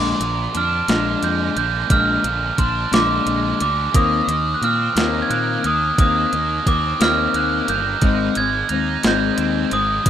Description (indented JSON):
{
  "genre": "indie rock",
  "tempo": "59 BPM (dotted quarters)",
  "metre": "6/8",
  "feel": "straight",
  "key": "Bb mixolydian",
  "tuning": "A4 = 438 Hz",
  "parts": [
    { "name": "glockenspiel with soft plastic mallets", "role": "melody", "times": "0.0-10.0 s", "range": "C6 to Ab6", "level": "-20 LUFS", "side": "right 2 dB", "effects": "plate reverb" },
    { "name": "electric guitar through a small old amp", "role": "riff", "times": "0.0-10.1 s", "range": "Bb2 to Eb4", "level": "-23 LUFS", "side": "left 6 dB", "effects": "spring reverb" },
    { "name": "heavy high-gain guitar", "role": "riff", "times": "0.0-10.1 s", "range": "Bb2 to Eb4", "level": "-28 LUFS", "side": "right 11 dB", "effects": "distortion, analog chorus" },
    { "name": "fuzz fingered electric bass", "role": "bass", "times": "0.0-10.1 s", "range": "G1 to Bb2", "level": "-25 LUFS", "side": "right 1 dB", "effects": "overdrive" },
    { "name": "clean 12-bit digital drum machine", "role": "drums", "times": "0.2-10.1 s", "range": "hi-hat, kick drum, snare drum", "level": "-19 LUFS", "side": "right 1 dB", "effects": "overdrive" }
  ],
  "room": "light reverb",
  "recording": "rough home demo mix",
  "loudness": "-16 LUFS",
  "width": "side -10 dB against mid",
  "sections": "0.0-10.1 A section",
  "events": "none",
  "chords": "0.0 Bb7; 3.9 Eb5; 8.0 Abmaj7"
}